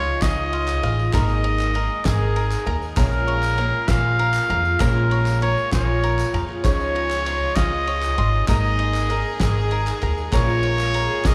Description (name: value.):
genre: indie folk with a building arrangement.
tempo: 65 BPM (dotted quarters).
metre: 6/8.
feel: straight.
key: unclear.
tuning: A4 = 440 Hz.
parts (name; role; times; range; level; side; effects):
clear trumpet; melody; 0.0-11.3 s; G#4 to E#5; -26 LUFS; equal; slapback echo, digital delay.
dark upright piano; accompaniment; 0.0-11.3 s; G#1 to D#5; -36 LUFS; equal; slapback echo.
picked twelve-string acoustic guitar; accompaniment; 0.0-11.3 s; G#2 to A#4; -31 LUFS; equal; slapback echo.
bluegrass banjo; arpeggios; 0.0-11.3 s; E#4 to B#5; -34 LUFS; equal; slapback echo, digital delay.
upright bass; bass; 0.0-11.3 s; G#1 to E#2; -25 LUFS; equal; none.
cloth-damped thuddy drum kit; drums; 0.2-11.3 s; kick drum, ride cymbal, snare drum; -29 LUFS; equal; none.
group handclap; percussion; 0.2-11.3 s; none; -39 LUFS; equal; none.
tambourine; percussion; 0.2-11.3 s; none; -44 LUFS; equal; none.
rich fiddle; second line; 6.7-11.3 s; E#4 to A#4; -35 LUFS; equal; slapback echo.
room: light reverb.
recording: live gig heard through the venue's PA, club ambience.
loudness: -21 LUFS.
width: mono.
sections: 0.0-11.3 A section.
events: none.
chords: 0.0 C#add9; 1.1 G#sus2; 3.0 A#m7; 6.6 C#add9; 8.5 G#sus2; 10.3 A#m7.